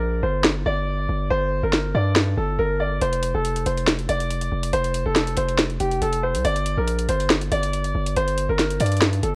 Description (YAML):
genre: hip hop, trap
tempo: 140 BPM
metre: 4/4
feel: half-time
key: G minor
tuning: A4 = 437 Hz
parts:
  - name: clear concert grand piano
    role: melody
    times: 0.0-9.4 s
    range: G4 to D5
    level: -27 LUFS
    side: equal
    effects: none
  - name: distorted 808-style bass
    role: bass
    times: 0.0-9.4 s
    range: F1 to G2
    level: -26 LUFS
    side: equal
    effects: distortion
  - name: trap drum kit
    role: drums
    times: 0.4-9.3 s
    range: hi-hat, snare drum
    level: -25 LUFS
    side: equal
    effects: none
room: little or no reverb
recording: worn, warbling old tape, cassette tape, warbly pitch drift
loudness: -22 LUFS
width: mono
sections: 0.0-9.4 A section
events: break 0.0-3.0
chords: 0.0 Gm; 3.0 F5; 6.4 Gm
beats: 0.02 0.44 0.87 | 1.30 1.73 2.16 2.59 | 3.02 3.44 3.87 4.30 | 4.73 5.16 5.59 6.02 | 6.44 6.87 7.30 7.73 | 8.16 8.59 9.02